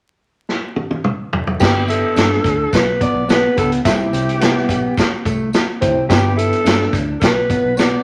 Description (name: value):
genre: uptempo 1960s-style soul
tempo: 107 BPM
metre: 4/4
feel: straight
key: G major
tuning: A4 = 440 Hz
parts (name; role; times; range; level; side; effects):
- vintage drum kit; drums; 0.5-7.9 s; crash cymbal, hi-hat, kick drum, snare drum, toms; -20 LUFS; equal; none
- raspy alto saxophone; melody; 1.6-8.0 s; G4 to D5; -22 LUFS; equal; none
- reed electric piano; accompaniment; 1.6-7.0 s; G2 to E5; -23 LUFS; equal; fast tremolo
- mellow electric guitar; riff; 1.6-8.0 s; A3 to G4; -24 LUFS; equal; none
- vintage muted picked electric bass; bass; 1.6-7.9 s; G1 to G2; -25 LUFS; equal; none
- tambourine; percussion; 1.6-7.9 s; none; -40 LUFS; equal; none
room: wet studio reverb, RT60 0.6 s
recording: vinyl crackle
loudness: -16 LUFS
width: mono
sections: 0.0-1.6 A section; 1.6-8.0 B section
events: drum fill 0.5-1.6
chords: 0.0 N.C.; 1.6 G; 3.9 C; 6.1 G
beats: 0.48 1.05 | 1.61 2.17 2.73 3.29 | 3.85 4.41 4.97 5.53 | 6.09 6.66 7.21 7.78